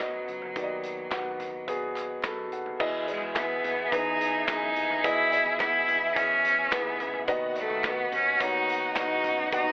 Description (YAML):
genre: piano-driven pop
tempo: 107 BPM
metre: 4/4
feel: straight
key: E major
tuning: A4 = 442 Hz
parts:
  - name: bright cello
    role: melody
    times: 0.0-9.7 s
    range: F#3 to E4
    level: -26 LUFS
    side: equal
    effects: none
  - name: warm grand piano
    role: accompaniment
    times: 0.0-9.7 s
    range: B2 to B5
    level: -31 LUFS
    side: equal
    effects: none
  - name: woody fretless electric bass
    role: bass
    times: 0.0-9.7 s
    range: C#2 to F#2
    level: -46 LUFS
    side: equal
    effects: none
  - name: loose indie drum kit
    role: drums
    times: 0.0-9.7 s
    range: crash cymbal, handclaps, hi-hat, kick drum, snare drum, toms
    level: -34 LUFS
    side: equal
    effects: none
  - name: group handclap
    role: percussion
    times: 1.1-9.1 s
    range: none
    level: -40 LUFS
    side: right 1 dB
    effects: none
  - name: warm symphonic violin section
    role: second line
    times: 2.8-9.7 s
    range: F#4 to F#5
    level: -34 LUFS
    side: equal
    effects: none
room: light reverb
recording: telephone sound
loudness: -24 LUFS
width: side -23 dB against mid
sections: 0.0-2.8 A section; 2.8-9.7 B section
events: grand piano fill 2.0-2.8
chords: 0.0 B; 2.8 Emaj7; 7.3 B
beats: 0.00 | 0.56 1.12 1.68 2.24 | 2.80 3.36 3.92 4.48 | 5.04 5.60 6.16 6.72 | 7.29 7.84 8.41 8.97 | 9.53